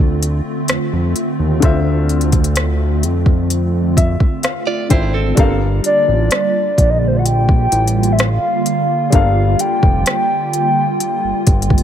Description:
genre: contemporary R&B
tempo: 64 BPM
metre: 4/4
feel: straight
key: G minor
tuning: A4 = 440 Hz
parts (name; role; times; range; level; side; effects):
- warm baby grand piano; accompaniment; 0.0-11.8 s; D3 to G5; -23 LUFS; left 5 dB; none
- hollow soft pad; sustained chords; 0.0-11.8 s; D3 to F4; -21 LUFS; right 2 dB; ensemble chorus
- fat analog bass; bass; 0.0-11.8 s; F1 to F2; -16 LUFS; equal; none
- smooth R&B drum kit; drums; 0.2-11.8 s; hi-hat, kick drum, rim click; -15 LUFS; equal; overdrive
- direct-recorded clean electric guitar; arpeggios; 4.7-5.6 s; C4 to D5; -22 LUFS; right 7 dB; digital delay
- hollow clarinet-like synth lead; melody; 5.9-11.8 s; C5 to G5; -17 LUFS; left 1 dB; chorus, digital delay
room: digital ambience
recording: none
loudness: -13 LUFS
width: side -10 dB against mid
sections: 0.0-5.4 A section; 5.4-11.8 B section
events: grand piano fill 3.5-5.4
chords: 0.0 Dm7; 5.4 Gm7

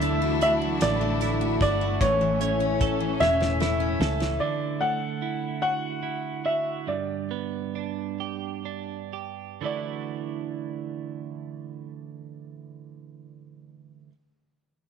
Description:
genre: six-eight pop ballad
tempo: 40-50 BPM (dotted quarters)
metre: 6/8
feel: straight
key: D major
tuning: A4 = 440 Hz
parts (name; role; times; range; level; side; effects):
- warm baby grand piano; melody; 0.0-14.1 s; C#5 to F#5; -27 LUFS; equal; none
- twelve-string electric guitar; accompaniment; 0.0-14.1 s; G2 to A4; -32 LUFS; right 12 dB; none
- warm studio string section; sustained chords; 0.0-4.4 s; E3 to E4; -30 LUFS; left 3 dB; none
- picked steel-string acoustic guitar; arpeggios; 0.0-5.0 s; E3 to F#4; -30 LUFS; left 14 dB; none
- vintage muted fingered electric bass; bass; 0.0-4.4 s; E1 to D2; -29 LUFS; equal; none
- damped 70s drum kit; drums; 0.0-4.4 s; hi-hat, kick drum, snare drum; -28 LUFS; equal; none
room: light reverb, small room ambience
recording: 1960s-style stereo with parts hard left and right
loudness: -24 LUFS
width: side -7 dB against mid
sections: 0.0-4.4 A section; 4.4-9.6 B section; 9.6-12.6 C section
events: drum fill 3.2-4.4; slowing down 4.4-9.6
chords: 0.0 Dadd9; 2.0 A; 4.4 Dadd9; 6.9 G; 9.6 Dadd9

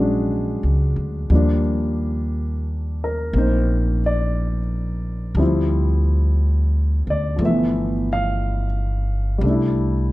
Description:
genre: jazz ballad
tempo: 59 BPM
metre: 4/4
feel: swing 69% on 8ths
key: unclear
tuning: A4 = 439 Hz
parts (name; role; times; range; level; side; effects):
- warm grand piano; accompaniment; 0.0-10.1 s; E3 to F5; -23 LUFS; left 1 dB; none
- upright bass; bass; 0.0-10.1 s; G1 to D#2; -20 LUFS; equal; none
room: light reverb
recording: dark, warm production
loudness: -18 LUFS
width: side -18 dB against mid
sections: 0.0-10.1 A section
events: none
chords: 0.0 A#7alt; 1.3 D#maj7; 5.4 Dm11; 7.4 G13; 9.4 C6

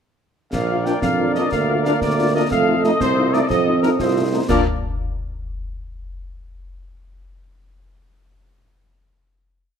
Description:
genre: military-style march for wind band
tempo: 121 BPM (dotted quarters)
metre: 6/8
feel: straight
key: Bb major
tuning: A4 = 440 Hz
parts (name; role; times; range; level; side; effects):
- mellow trumpet section; melody; 0.5-4.6 s; Bb4 to G5; -24 LUFS; left 1 dB; none
- warm woodwind section; second line; 0.5-4.6 s; A4 to Eb5; -26 LUFS; left 2 dB; none
- clear tuba; bass; 0.5-4.6 s; Bb1 to Bb2; -21 LUFS; right 3 dB; none
- concert snare drum, clash cymbals and concert bass drum; drums; 0.5-4.7 s; none; -28 LUFS; left 2 dB; none
- dark French horn section; accompaniment; 0.7-4.6 s; A3 to F4; -26 LUFS; left 5 dB; none
- mellow trombone section; sustained chords; 0.9-4.6 s; A3 to Eb4; -27 LUFS; right 1 dB; none
- mellow euphonium; second line; 1.0-4.2 s; A3 to F4; -23 LUFS; right 5 dB; none
room: moderate recital hall reverb, RT60 1.3 s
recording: none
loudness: -16 LUFS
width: side -7 dB against mid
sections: 0.5-4.5 A section; 4.5-5.5 final chord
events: none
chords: 0.5 Bb; 1.5 Bb/D; 2.5 F7; 4.5 Bb

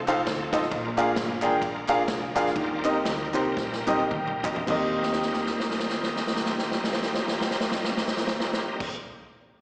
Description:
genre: uptempo gospel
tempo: 101-135 BPM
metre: 4/4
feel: swing 59% on 8ths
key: Eb major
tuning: A4 = 440 Hz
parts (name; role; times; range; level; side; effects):
- mellow electric guitar; second line; 0.0-0.7 s; C4 to C5; -41 LUFS; equal; none
- bright tonewheel organ; sustained chords; 0.0-8.9 s; F3 to D5; -35 LUFS; equal; slow rotary speaker, chorus vibrato
- hollow-body short-scale fingered electric bass; bass; 0.0-8.9 s; G1 to Fb2; -45 LUFS; equal; none
- warm concert grand piano; accompaniment; 0.1-8.9 s; Eb2 to G5; -29 LUFS; equal; plate reverb, slapback echo
- swinging big-band drum kit; drums; 0.1-9.0 s; crash cymbal, kick drum, ride cymbal, snare drum, toms; -32 LUFS; equal; slapback echo
- group handclap; percussion; 0.1-8.9 s; none; -39 LUFS; equal; none
room: moderate club reverb, RT60 0.5 s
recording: live gig heard through the venue's PA, recital hall reverb, small speaker sound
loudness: -27 LUFS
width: mono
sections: 0.0-4.7 A section; 4.7-9.4 B section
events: slowing down 0.7-4.7; drum fill 3.6-4.7, 5.0-8.8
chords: 0.0 F7; 0.7 Bb7; 2.6 Eb6

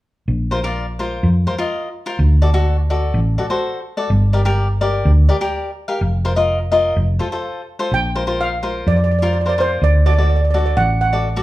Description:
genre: calypso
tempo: 126 BPM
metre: 4/4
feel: straight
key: Bb major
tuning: A4 = 442 Hz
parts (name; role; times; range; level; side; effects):
- hollow-body short-scale fingered electric bass; bass; 0.3-11.4 s; F1 to F2; -16 LUFS; equal; none
- cavaquinho; accompaniment; 0.5-11.4 s; F4 to F5; -21 LUFS; left 2 dB; none
- steel pan; melody; 7.9-11.4 s; C5 to G5; -19 LUFS; right 3 dB; none
room: moderate large studio reverb, RT60 0.8 s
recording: band playing live in one room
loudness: -15 LUFS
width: side -16 dB against mid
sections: 0.3-7.9 A section; 7.9-11.4 B section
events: none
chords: 0.3 Bbsus2; 2.2 D7; 4.1 Gm; 6.0 Fsus4; 7.0 F; 7.9 Bbsus2; 9.8 D

